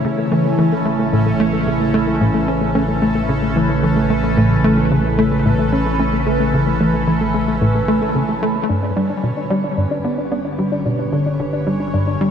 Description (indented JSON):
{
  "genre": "ambient",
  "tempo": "111 BPM",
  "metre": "4/4",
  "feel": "straight",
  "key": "A major",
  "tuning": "A4 = 440 Hz",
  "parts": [
    { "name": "phased analog pad", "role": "sustained chords", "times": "0.0-12.3 s", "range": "C#3 to B4", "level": "-19 LUFS", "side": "right 1 dB", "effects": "phaser, chorus, shimmer reverb" },
    { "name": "soft round pluck", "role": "arpeggios", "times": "0.0-12.3 s", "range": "A3 to D4", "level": "-24 LUFS", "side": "left 2 dB", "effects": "chorus, auto-pan, ping-pong delay, shimmer reverb" },
    { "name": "tight sequencer bass", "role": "riff", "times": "0.0-12.3 s", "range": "G2 to C#4", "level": "-19 LUFS", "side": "left 1 dB", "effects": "wide subtle chorus, ping-pong delay, shimmer reverb" },
    { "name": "analog drone", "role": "bass", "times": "0.9-12.3 s", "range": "G1 to A1", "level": "-26 LUFS", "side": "equal", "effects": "chorus" },
    { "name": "bubbling stepped-filter texture", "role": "texture", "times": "0.0-12.3 s", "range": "C#4 to C#5", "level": "-25 LUFS", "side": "right 2 dB", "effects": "chorus, built-in reverb, shimmer reverb" }
  ],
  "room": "moderate lush hall reverb, RT60 2.8 s",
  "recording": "dark, warm production, faint mains hum",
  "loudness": "-15 LUFS",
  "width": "side -8 dB against mid",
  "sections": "0.0-8.7 A section; 8.7-12.3 B section",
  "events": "none",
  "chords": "0.0 A; 8.7 G"
}